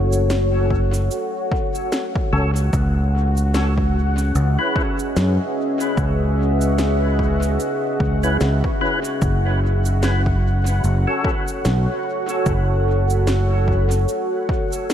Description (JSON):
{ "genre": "ambient dub", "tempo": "74 BPM", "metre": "4/4", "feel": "swing 58% on 16ths", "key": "F# dorian", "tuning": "A4 = 442 Hz", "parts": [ { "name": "deep dark ambient pad", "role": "sustained chords", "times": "0.0-14.9 s", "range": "C#4 to E5", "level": "-24 LUFS", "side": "equal", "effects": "chorus, built-in reverb" }, { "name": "overdriven fingered electric bass", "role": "bass", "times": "0.0-14.1 s", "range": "F#1 to F#2", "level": "-18 LUFS", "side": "equal", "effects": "none" }, { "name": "bubbling stepped-filter texture", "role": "texture", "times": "0.0-14.9 s", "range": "F#4 to F#5", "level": "-30 LUFS", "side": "left 2 dB", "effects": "chorus, built-in reverb" }, { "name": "electronic cabasa and snare drum", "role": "drums", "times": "0.1-14.9 s", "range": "none", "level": "-28 LUFS", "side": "equal", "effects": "overdrive, studio reverb, dub echo" }, { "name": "electronic kick drum", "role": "drums", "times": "0.7-14.7 s", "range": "none", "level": "-24 LUFS", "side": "equal", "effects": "overdrive, studio reverb" }, { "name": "percussive tonewheel organ", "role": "stabs", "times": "2.3-11.3 s", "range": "C#4 to B4", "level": "-27 LUFS", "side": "left 1 dB", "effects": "overdrive, chorus vibrato, slow rotary speaker, dub echo" } ], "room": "light reverb, digital ambience", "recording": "vinyl crackle", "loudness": "-17 LUFS", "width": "side -10 dB against mid", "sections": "0.0-14.9 A section", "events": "none", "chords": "0.0 F#m; 2.7 C#m7; 9.2 F#m", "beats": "0.30 1.11 1.92 | 2.73 3.54 4.36 5.17 | 5.98 6.79 7.60 8.41 | 9.22 10.03 10.84 11.65 | 12.46 13.27 14.09 14.90" }